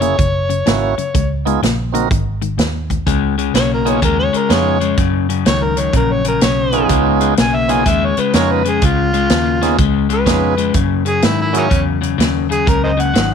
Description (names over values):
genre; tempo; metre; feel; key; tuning
electric blues shuffle; 125 BPM; 4/4; swing 65% on 8ths; Db mixolydian; A4 = 440 Hz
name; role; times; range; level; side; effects
overdriven harmonica; melody; 0.0-13.3 s; Gb3 to Ab5; -18 LUFS; equal; none
tonewheel organ; accompaniment; 0.0-11.7 s; Bb3 to Bb4; -19 LUFS; right 15 dB; overdrive
electric guitar at the edge of break-up; riff; 0.0-13.3 s; Gb2 to Bb3; -18 LUFS; left 12 dB; none
vintage muted fingered electric bass; bass; 0.0-13.3 s; F1 to Ab2; -20 LUFS; right 2 dB; none
natural country drum kit; drums; 0.0-13.3 s; hi-hat, kick drum, snare drum; -18 LUFS; right 1 dB; none
room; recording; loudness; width
small room ambience; 1960s-style stereo with parts hard left and right; -13 LUFS; side -7 dB against mid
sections
0.0-3.1 A section; 3.1-13.3 B section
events
harmonica solo 3.1-13.3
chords
0.2 Gb9; 1.1 Db9; 2.1 Ab5; 3.1 Db9; 5.0 Gbadd9; 6.9 Db9; 10.7 Gb7sus2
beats
0.19 0.67 | 1.15 1.62 2.10 2.58 | 3.06 3.54 4.02 4.50 | 4.98 5.46 5.94 6.42 | 6.90 7.38 7.86 8.34 | 8.82 9.30 9.78 10.26 | 10.74 11.22 11.71 12.19 | 12.67 13.15